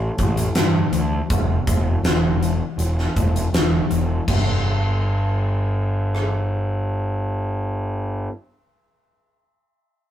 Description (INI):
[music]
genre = quiet-loud alternative rock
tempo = 80 BPM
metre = 4/4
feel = straight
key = unclear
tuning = A4 = 439 Hz
[part]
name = fuzz picked electric bass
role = bass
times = 0.0-8.3 s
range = E1 to G2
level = -21 LUFS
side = equal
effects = overdrive
[part]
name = huge arena drum kit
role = drums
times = 0.2-6.3 s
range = crash cymbal, hi-hat, kick drum, rim click, snare drum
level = -21 LUFS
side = left 1 dB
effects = none
[sound]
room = light reverb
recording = rough rehearsal-room recording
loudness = -19 LUFS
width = side -11 dB against mid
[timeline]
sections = 0.0-4.3 A section; 4.3-7.3 B section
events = none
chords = none